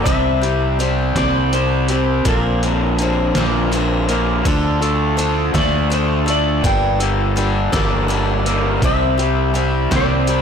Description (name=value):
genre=folk rock and heartland rock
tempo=55 BPM (dotted quarters)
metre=6/8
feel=straight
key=unclear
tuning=A4 = 440 Hz
part: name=clean lap steel guitar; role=melody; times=0.0-10.4 s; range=Bb4 to G5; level=-22 LUFS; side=left 2 dB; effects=none
part: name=picked swing-style acoustic guitar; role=accompaniment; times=0.0-10.4 s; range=G2 to Bb4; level=-23 LUFS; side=left 6 dB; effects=none
part: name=raw garage guitar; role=riff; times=0.0-10.4 s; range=G2 to C4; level=-20 LUFS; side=right 1 dB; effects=overdrive
part: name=fingered electric bass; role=bass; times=0.1-10.4 s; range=G1 to D2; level=-20 LUFS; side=right 1 dB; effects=none
part: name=trip hop sampler-style drum kit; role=drums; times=0.1-10.4 s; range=hi-hat, kick drum, snare drum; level=-23 LUFS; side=right 1 dB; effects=overdrive
room=light reverb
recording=blown-out, overdriven recording, overdrive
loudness=-15 LUFS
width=side -7 dB against mid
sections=0.0-10.4 A section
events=none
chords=0.1 Csus2; 2.3 Bbadd9; 4.5 Dm; 6.6 Gmadd9; 8.8 Csus2